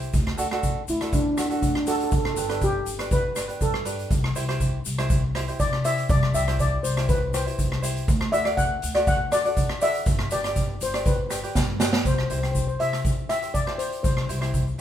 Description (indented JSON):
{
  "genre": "calypso",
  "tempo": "121 BPM",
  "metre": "4/4",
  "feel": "straight",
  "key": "C major",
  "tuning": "A4 = 441 Hz",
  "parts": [
    { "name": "tenor ukulele", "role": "accompaniment", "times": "0.0-14.8 s", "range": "D4 to D5", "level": "-29 LUFS", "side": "right 1 dB", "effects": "none" },
    { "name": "upright bass", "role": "bass", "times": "0.0-14.7 s", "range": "G1 to D3", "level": "-29 LUFS", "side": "left 1 dB", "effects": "none" },
    { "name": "street-band drum kit", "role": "drums", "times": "0.0-14.8 s", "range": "hi-hat, kick drum, rim click, snare drum", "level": "-25 LUFS", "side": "equal", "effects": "none" },
    { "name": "egg shaker", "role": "percussion", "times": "0.0-14.7 s", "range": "none", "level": "-37 LUFS", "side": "left 6 dB", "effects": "none" },
    { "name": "steel pan", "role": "melody", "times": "0.9-14.5 s", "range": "D4 to F#5", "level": "-27 LUFS", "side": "left 1 dB", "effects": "none" }
  ],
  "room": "moderate studio ambience, RT60 0.4 s",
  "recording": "band playing live in one room",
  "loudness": "-22 LUFS",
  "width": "side -10 dB against mid",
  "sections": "0.0-12.1 A section; 12.1-14.8 B section",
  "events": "steel pan solo 0.0-12.1; drum fill 11.6-12.1",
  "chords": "0.1 D; 2.1 G; 4.1 C; 8.1 D; 10.1 G; 12.1 C",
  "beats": "| 0.14 0.64 1.13 1.63 | 2.13 2.62 3.12 3.62 | 4.11 4.61 5.11 5.60 | 6.10 6.60 7.09 7.59 | 8.09 8.58 9.08 9.57 | 10.07 10.57 11.06 11.56 | 12.06 12.55 13.05 13.55 | 14.05 14.54"
}